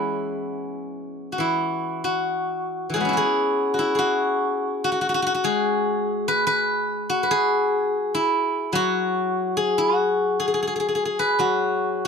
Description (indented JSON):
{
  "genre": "chinese traditional, Chinese solo plucked strings",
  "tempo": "72 BPM",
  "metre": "4/4",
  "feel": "rubato",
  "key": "E gong mode",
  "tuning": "A4 = 440 Hz",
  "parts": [
    { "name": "steel-string zither", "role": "solo", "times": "0.0-12.1 s", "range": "E3 to C#5", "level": "-21 LUFS", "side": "left 1 dB", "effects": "none" }
  ],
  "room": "light reverb",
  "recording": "none",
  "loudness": "-20 LUFS",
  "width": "side -6 dB against mid",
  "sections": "0.0-1.4 A section; 1.4-12.1 B section",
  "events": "none",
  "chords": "none",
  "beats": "0.50 | 1.40 2.27 3.13 3.99 | 4.83 5.66 6.49 7.31 | 8.13 8.95 9.77 10.58 | 11.41"
}